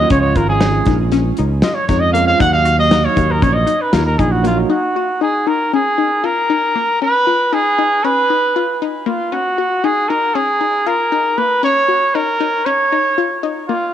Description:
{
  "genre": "progressive instrumental, band music in an uneven meter",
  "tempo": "234 BPM (eighths)",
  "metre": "9/8",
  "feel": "straight",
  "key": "Eb minor",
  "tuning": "A4 = 437 Hz",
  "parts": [
    { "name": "warm trumpet", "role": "melody", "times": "0.0-13.9 s", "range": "F4 to Gb5", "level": "-15 LUFS", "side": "right 1 dB", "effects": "cassette tape, analog delay" },
    { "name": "tine electric piano", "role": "accompaniment", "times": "0.0-4.7 s", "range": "F3 to Gb4", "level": "-21 LUFS", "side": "right 11 dB", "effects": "medium stereo tremolo, cassette tape" },
    { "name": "wide unison pluck", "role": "arpeggios", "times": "0.0-13.9 s", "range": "Bb3 to Gb4", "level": "-21 LUFS", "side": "left 8 dB", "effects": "cassette tape, analog delay" },
    { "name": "fingered electric bass", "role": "bass", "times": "0.0-4.6 s", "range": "Ab1 to F2", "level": "-16 LUFS", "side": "equal", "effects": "none" },
    { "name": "modern studio drum kit", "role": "drums", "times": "0.1-4.6 s", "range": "hi-hat, kick drum, snare drum", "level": "-19 LUFS", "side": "equal", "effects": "cassette tape" }
  ],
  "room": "light reverb, studio reverb",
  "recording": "home recording on cassette",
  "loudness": "-13 LUFS",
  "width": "side -10 dB against mid",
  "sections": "0.0-4.7 A section; 4.7-13.9 B section",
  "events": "trumpet solo 0.0-4.7",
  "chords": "0.1 Db; 2.4 Ebm; 7.0 Db9; 9.3 Eb7(no3)"
}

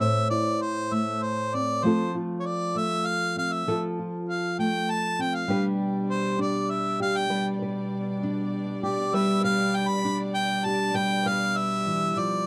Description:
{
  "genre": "acoustic folk duo or small band",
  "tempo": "66 BPM (dotted quarters)",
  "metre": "6/8",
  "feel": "straight",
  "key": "unclear",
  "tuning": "A4 = 440 Hz",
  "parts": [
    { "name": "warm harmonica", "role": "melody", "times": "0.0-12.5 s", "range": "C5 to B5", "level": "-29 LUFS", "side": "equal", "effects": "none" },
    { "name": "nylon-string guitar", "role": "accompaniment", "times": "0.0-12.5 s", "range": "A2 to C5", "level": "-29 LUFS", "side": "equal", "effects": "none" },
    { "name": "warm chamber string section", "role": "sustained chords", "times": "5.5-12.5 s", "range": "B2 to D5", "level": "-38 LUFS", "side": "equal", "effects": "none" }
  ],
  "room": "little or no reverb",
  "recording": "close, detailed microphones",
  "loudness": "-26 LUFS",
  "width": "mono",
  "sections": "0.0-12.5 A section",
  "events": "harmonica solo 0.0-12.5",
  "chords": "0.0 Am; 1.8 F; 5.5 G"
}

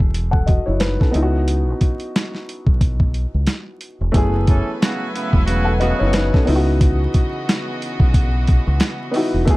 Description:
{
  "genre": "hip hop, boom-bap hip-hop",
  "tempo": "90 BPM",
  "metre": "4/4",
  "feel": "swing 58% on 16ths",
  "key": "F# dorian",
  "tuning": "A4 = 441 Hz",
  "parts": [
    { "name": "dark baby grand piano", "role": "accompaniment", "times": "0.0-9.6 s", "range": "A3 to F#5", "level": "-23 LUFS", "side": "left 1 dB", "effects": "cassette tape, high-pass filter, low-pass filter" },
    { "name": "deep dub fingered electric bass", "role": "bass", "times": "0.0-9.5 s", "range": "E1 to C#2", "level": "-19 LUFS", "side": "equal", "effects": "none" },
    { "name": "boom bap sampler-style drum kit", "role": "drums", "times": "0.0-9.6 s", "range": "hi-hat, kick drum, snare drum", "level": "-17 LUFS", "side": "equal", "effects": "vintage 12-bit sampler grit" },
    { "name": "warm chamber string section", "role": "sustained chords", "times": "4.1-9.6 s", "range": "C#3 to G#5", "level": "-27 LUFS", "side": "equal", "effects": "high-pass filter, low-pass filter" },
    { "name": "warm horn section", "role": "stabs", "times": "4.5-6.3 s", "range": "C#3 to A4", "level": "-24 LUFS", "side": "right 1 dB", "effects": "high-pass filter, low-pass filter, ping-pong delay" }
  ],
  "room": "little or no reverb",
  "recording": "vinyl crackle",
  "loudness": "-16 LUFS",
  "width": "side -20 dB against mid",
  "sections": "0.0-4.1 A section; 4.1-9.6 B section",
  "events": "break 1.5-4.1",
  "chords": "0.0 F#m11; 1.1 C#m11; 4.1 F#m11; 6.5 C#m11"
}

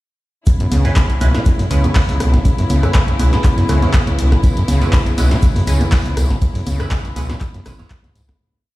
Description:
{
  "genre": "acid house",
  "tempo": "121 BPM",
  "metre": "4/4",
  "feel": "swing 54% on 16ths",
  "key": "C# minor",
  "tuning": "A4 = 441 Hz",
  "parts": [
    { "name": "rich studio string section", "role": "sustained chords", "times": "0.5-8.4 s", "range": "C#3 to E4", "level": "-23 LUFS", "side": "left 1 dB", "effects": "sidechain pumping" },
    { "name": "overdriven acid bass", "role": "riff", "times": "0.5-8.3 s", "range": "B1 to C#3", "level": "-19 LUFS", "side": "equal", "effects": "distortion, tube saturation, cassette tape, digital delay" },
    { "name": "electronic kick drum", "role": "drums", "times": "0.5-8.4 s", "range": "none", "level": "-15 LUFS", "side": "equal", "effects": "none" },
    { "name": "punchy analog drum machine", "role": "drums", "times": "0.5-8.4 s", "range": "congas, handclaps, hi-hat, rim click, snare drum", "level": "-23 LUFS", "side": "equal", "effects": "overdrive" },
    { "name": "raw garage drum kit", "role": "drums", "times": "0.5-8.3 s", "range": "hi-hat, shaker, snare drum", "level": "-36 LUFS", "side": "equal", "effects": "high-pass filter on hats, high-pass filter on snare, high-pass filter on perc, high-pass filter on room" },
    { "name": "warm sub bass", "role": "bass", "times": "0.7-8.3 s", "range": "G#1 to C#2", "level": "-17 LUFS", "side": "equal", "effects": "sidechain pumping" },
    { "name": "band-passed chord stab", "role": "stabs", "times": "0.8-7.9 s", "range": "G#3 to C#5", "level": "-27 LUFS", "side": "right 3 dB", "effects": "phaser, lush chorus, digital delay" },
    { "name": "tambourine", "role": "percussion", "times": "4.4-8.4 s", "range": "none", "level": "-36 LUFS", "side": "left 1 dB", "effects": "none" }
  ],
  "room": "light reverb",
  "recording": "played on a big sound system in a bare room, large studio reverb",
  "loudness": "-13 LUFS",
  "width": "side -18 dB against mid",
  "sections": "0.5-8.4 drop",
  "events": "drop 0.5-8.4; fade-out 5.8-8.4",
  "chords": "0.5 C#m7"
}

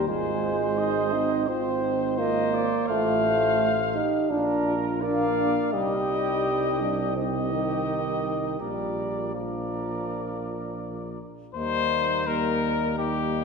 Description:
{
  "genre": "classical, brass quintet",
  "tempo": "84 BPM",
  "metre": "4/4",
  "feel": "straight",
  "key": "Eb major",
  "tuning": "A4 = 440 Hz",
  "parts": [
    { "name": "warm cornet", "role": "melody", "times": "0.0-13.4 s", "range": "G4 to F5", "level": "-30 LUFS", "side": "left 7 dB", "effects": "none" },
    { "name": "warm flugelhorn", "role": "second line", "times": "0.0-13.4 s", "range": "Eb4 to Eb5", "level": "-33 LUFS", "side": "right 6 dB", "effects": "none" },
    { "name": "clear euphonium", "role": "accompaniment", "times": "0.0-13.4 s", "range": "Eb3 to Eb4", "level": "-27 LUFS", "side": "right 2 dB", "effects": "none" },
    { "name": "mellow French horn", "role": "accompaniment", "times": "0.0-13.4 s", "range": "Bb3 to A4", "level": "-33 LUFS", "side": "left 5 dB", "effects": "none" },
    { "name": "mellow tuba", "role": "bass", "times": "0.0-13.4 s", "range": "Ab1 to Eb2", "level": "-32 LUFS", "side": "right 3 dB", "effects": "none" }
  ],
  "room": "wet scoring stage reverb, RT60 1.9 s",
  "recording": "recorded in a church or concert hall",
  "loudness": "-23 LUFS",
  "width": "side -5 dB against mid",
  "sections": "0.0-11.5 A section; 11.5-13.4 B section",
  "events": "none",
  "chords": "0.1 Ab; 1.5 Fm/Ab; 2.9 F/A; 4.3 Bb; 5.7 Cm; 8.6 Bb; 11.5 Eb"
}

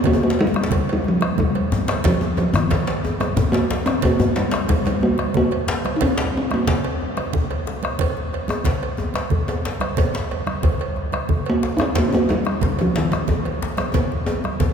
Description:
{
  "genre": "west african traditional, West African drum ensemble",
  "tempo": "121 BPM (dotted quarters)",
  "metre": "12/8",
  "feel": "straight",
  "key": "Eb major pentatonic",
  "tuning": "A4 = 441 Hz",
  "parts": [
    { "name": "talking drum", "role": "melody", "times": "0.0-7.2, 11.5-14.7 s", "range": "Eb3 to Eb4", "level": "-21 LUFS", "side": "equal", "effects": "none" },
    { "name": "congas", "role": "percussion", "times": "0.0-14.7 s", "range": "none", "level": "-29 LUFS", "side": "right 5 dB", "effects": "none" },
    { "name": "djembe", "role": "percussion", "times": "0.0-14.7 s", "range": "none", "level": "-28 LUFS", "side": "left 3 dB", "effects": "none" },
    { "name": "bombo", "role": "percussion", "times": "0.1-14.7 s", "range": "none", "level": "-24 LUFS", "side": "equal", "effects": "none" },
    { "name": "cowbell", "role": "percussion", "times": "0.1-14.7 s", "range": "none", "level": "-30 LUFS", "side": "right 6 dB", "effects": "none" },
    { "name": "djembe", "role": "percussion", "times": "0.1-14.7 s", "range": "none", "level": "-26 LUFS", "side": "left 3 dB", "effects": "none" }
  ],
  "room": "wet cathedral reverb, RT60 6.4 s",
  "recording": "recorded in a church or concert hall",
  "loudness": "-18 LUFS",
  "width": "side -7 dB against mid",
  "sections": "0.1-14.7 A section",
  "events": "drum fill 13.9-14.7",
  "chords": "none"
}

